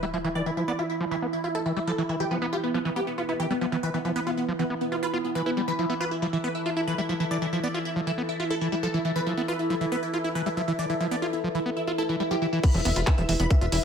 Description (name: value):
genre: psychedelic trance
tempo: 138 BPM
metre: 4/4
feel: straight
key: unclear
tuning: A4 = 440 Hz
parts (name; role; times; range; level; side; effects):
- supersaw stab; melody; 0.0-13.8 s; B3 to B5; -30 LUFS; equal; phaser, sidechain pumping, dub echo
- overtone-sweeping drone; sustained chords; 0.0-13.8 s; E3 to A4; -33 LUFS; equal; chorus, built-in reverb, sidechain pumping
- overdriven acid bass; riff; 0.0-13.8 s; E3 to F4; -29 LUFS; equal; distortion, auto-pan, sidechain pumping, dub echo
- sub drop and swell; sound effects; 0.0-0.5, 12.0-12.6 s; none; -36 LUFS; right 2 dB; none
- warbly tape-like pad; texture; 0.8-13.8 s; E4 to E5; -35 LUFS; right 2 dB; chorus, built-in reverb, sidechain pumping
- drum and bass drum kit; drums; 12.6-13.8 s; bongos, crash cymbal, handclaps, hi-hat; -30 LUFS; left 2 dB; low-pass filter on hats, low-pass filter on perc, low-pass filter on snare, low-pass filter on cymbals
- electronic kick drum; drums; 12.6-13.6 s; none; -20 LUFS; equal; none
- plucky analog bass; bass; 12.7-13.8 s; E1; -26 LUFS; equal; none
room: light reverb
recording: none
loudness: -24 LUFS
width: side -7 dB against mid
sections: 0.0-12.6 A section; 12.6-13.8 B section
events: impact 0.0-0.5; filter sweep on acid bass 0.0-12.6; swell 12.0-12.6; drop 12.6-13.8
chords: 0.0 E5